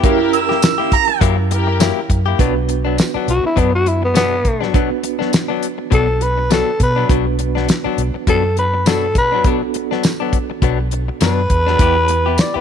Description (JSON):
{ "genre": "straight-eighth soul blues", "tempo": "102 BPM", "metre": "4/4", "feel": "swing 55% on 16ths", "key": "B minor", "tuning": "A4 = 441 Hz", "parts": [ { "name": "reed electric piano", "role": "accompaniment", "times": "0.0-12.6 s", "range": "B3 to B4", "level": "-24 LUFS", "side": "right 14 dB", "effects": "fast tremolo" }, { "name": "dark symphonic string section", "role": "sustained chords", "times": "0.0-2.0 s", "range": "E4 to A#4", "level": "-22 LUFS", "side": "equal", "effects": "none" }, { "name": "direct-recorded clean electric guitar", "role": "stabs", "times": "0.0-12.6 s", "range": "B2 to G4", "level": "-21 LUFS", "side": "left 14 dB", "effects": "none" }, { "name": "vintage muted fingered electric bass", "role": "bass", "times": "0.0-12.6 s", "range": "B1 to B2", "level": "-19 LUFS", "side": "equal", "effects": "none" }, { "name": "damped 70s drum kit", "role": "drums", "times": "0.0-12.5 s", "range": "hi-hat, kick drum, snare drum, tambourine", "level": "-17 LUFS", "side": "equal", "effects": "none" }, { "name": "mellow harmonica", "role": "second line", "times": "0.3-1.2 s", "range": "A#5 to E6", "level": "-19 LUFS", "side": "right 13 dB", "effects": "none" }, { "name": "growling tenor saxophone", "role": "melody", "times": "3.3-12.6 s", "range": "B3 to D5", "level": "-17 LUFS", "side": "left 1 dB", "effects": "none" } ], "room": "light reverb, studio reverb", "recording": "1960s-style stereo with parts hard left and right", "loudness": "-14 LUFS", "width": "side -8 dB against mid", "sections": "0.0-2.4 A section; 2.4-12.6 B section", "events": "harmonica solo 0.0-2.4", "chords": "0.0 F#7b9; 2.4 Bm; 11.8 Em" }